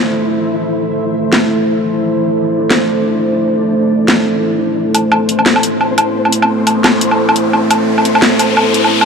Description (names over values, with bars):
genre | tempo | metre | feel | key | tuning
half-time drum and bass | 174 BPM | 4/4 | swing 58% on 16ths, half-time | A minor | A4 = 440 Hz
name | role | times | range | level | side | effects
deep dark ambient pad | sustained chords | 0.0-9.1 s | A3 to C5 | -14 LUFS | right 1 dB | chorus, built-in reverb
flickering grainy texture | texture | 0.0-9.1 s | E3 to C5 | -20 LUFS | left 1 dB | built-in reverb, wide subtle chorus
drum and bass drum kit | drums | 1.3-9.1 s | hi-hat, snare drum, woodblock | -14 LUFS | equal | none
riser | sound effects | 5.8-9.1 s | none | -20 LUFS | left 4 dB | none
room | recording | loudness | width
wet huge ambient reverb, RT60 4.0 s | dreamy mix soaked in reverb | -11 LUFS | side -5 dB against mid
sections
0.0-4.8 A section; 4.8-9.1 B section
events
build-up 4.8-9.1; riser 5.8-9.1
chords
0.0 Am